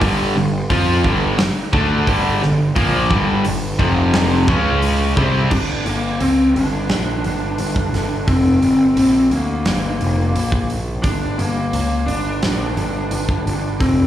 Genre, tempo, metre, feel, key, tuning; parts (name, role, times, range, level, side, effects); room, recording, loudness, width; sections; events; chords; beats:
hard rock; 87 BPM; 4/4; straight; A4 = 442 Hz
cranked stack guitar; riff; 0.0-5.5 s; F2 to F4; -17 LUFS; equal; overdrive
fuzz picked electric bass; bass; 0.0-14.1 s; F1 to F2; -20 LUFS; equal; overdrive
big rock drum kit; drums; 0.0-14.0 s; crash cymbal, hi-hat, kick drum, snare drum; -22 LUFS; equal
lead guitar through a small cranked amp; melody; 5.5-14.1 s; Bb3 to D4; -18 LUFS; left 1 dB; overdrive
moderate club reverb, RT60 0.5 s; live gig heard through the venue's PA, club reverb; -15 LUFS; side -11 dB against mid
0.0-5.5 A section; 5.5-14.1 B section
0.0 Gm; 3.8 F5; 4.5 C#5; 5.2 C5; 5.5 Gm; 10.3 N.C.; 11.0 Gm
| 0.02 0.70 1.39 2.08 | 2.76 3.45 4.14 4.83 | 5.51 6.20 6.89 7.58 | 8.27 8.96 9.65 10.35 | 11.04 11.73 12.42 13.11 | 13.80